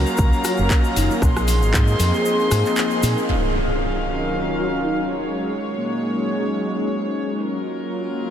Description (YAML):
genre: nu-disco, nu disco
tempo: 116 BPM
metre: 4/4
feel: swing 55% on 16ths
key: Eb dorian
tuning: A4 = 443 Hz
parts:
  - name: warm analog pad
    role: accompaniment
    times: 0.0-8.3 s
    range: F3 to Eb5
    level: -24 LUFS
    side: left 1 dB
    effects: chorus, sidechain pumping, analog delay
  - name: dark symphonic string section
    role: sustained chords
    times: 0.0-8.3 s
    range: Eb3 to C6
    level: -26 LUFS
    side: equal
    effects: sidechain pumping
  - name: fingered electric bass with an envelope filter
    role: bass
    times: 0.0-3.1 s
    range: Gb1 to Bb2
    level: -20 LUFS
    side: equal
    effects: none
  - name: egg shaker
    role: percussion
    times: 0.1-3.3 s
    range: none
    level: -33 LUFS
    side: left 4 dB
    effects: none
  - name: electronic kick drum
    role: drums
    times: 0.2-1.9 s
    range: none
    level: -18 LUFS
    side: equal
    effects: none
  - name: soft octave-layered synth lead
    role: melody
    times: 0.4-6.5 s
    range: Bb3 to Ab4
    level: -28 LUFS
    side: equal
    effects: chorus, phaser, analog delay
  - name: house drum kit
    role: drums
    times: 0.4-3.1 s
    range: handclaps, hi-hat, rim click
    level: -28 LUFS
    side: left 1 dB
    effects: none
  - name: impact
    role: sound effects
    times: 3.3-5.4 s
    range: none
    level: -28 LUFS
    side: equal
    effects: none
room: moderate huge ambient reverb, RT60 7.7 s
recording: dreamy mix soaked in reverb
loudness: -18 LUFS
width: side -9 dB against mid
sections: 0.0-3.3 A section; 3.3-8.3 B section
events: kick drops out 2.3-3.3; impact 3.3-5.4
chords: 0.0 Gbmaj7; 1.2 Bb9sus4; 3.3 Ebm9; 5.1 Ab7sus4; 7.4 Gbmaj7